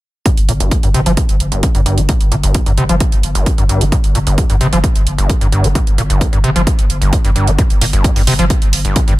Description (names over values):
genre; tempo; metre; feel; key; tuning
driving peak-time techno; 131 BPM; 4/4; straight; unclear; A4 = 435 Hz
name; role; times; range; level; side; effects
overdriven acid bass; riff; 0.3-9.1 s; G1 to G3; -17 LUFS; equal; distortion, wide subtle chorus, sidechain pumping, dub echo
electronic hi-hat; drums; 0.3-9.2 s; none; -21 LUFS; right 5 dB; sidechain pumping on hats
electronic kick drum; drums; 0.3-9.1 s; none; -14 LUFS; equal; none
saturated sub bass; bass; 0.4-9.2 s; G1; -17 LUFS; equal; overdrive, sidechain pumping, low-pass filter
room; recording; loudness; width
digital ambience; none; -11 LUFS; side -17 dB against mid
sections
0.3-9.2 A section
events
filter sweep on acid bass 0.3-9.2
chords
none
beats
| 0.26 0.72 1.17 1.63 | 2.09 2.55 3.01 3.46 | 3.92 4.38 4.84 5.30 | 5.75 6.21 6.67 7.13 | 7.59 8.04 8.50 8.96